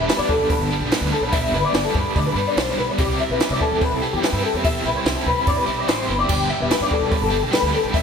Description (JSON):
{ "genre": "math rock and midwest emo", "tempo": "145 BPM", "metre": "4/4", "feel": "straight", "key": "C major", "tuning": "A4 = 440 Hz", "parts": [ { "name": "twangy electric guitar", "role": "accompaniment", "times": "0.0-1.3 s", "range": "none", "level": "barely audible", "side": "none", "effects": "none" }, { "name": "electric guitar through a small old amp", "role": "arpeggios", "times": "0.0-8.0 s", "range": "G4 to E5", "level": "-21 LUFS", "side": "left 3 dB", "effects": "ensemble chorus" }, { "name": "overdriven electric guitar", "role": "riff", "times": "0.0-8.0 s", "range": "G2 to G4", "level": "-24 LUFS", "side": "right 2 dB", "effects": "tremolo, slapback echo" }, { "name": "upright bass", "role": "bass", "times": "0.0-8.0 s", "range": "E1 to C3", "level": "-26 LUFS", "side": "equal", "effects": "none" }, { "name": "compact cocktail drum kit", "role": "drums", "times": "0.1-8.0 s", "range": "crash cymbal, hi-hat, kick drum, snare drum", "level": "-24 LUFS", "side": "right 1 dB", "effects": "none" } ], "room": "wet lush hall reverb, RT60 2.0 s", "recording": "big arena sound", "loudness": "-18 LUFS", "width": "side -6 dB against mid", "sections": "0.0-8.0 A section", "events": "none", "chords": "0.0 G; 6.3 G6" }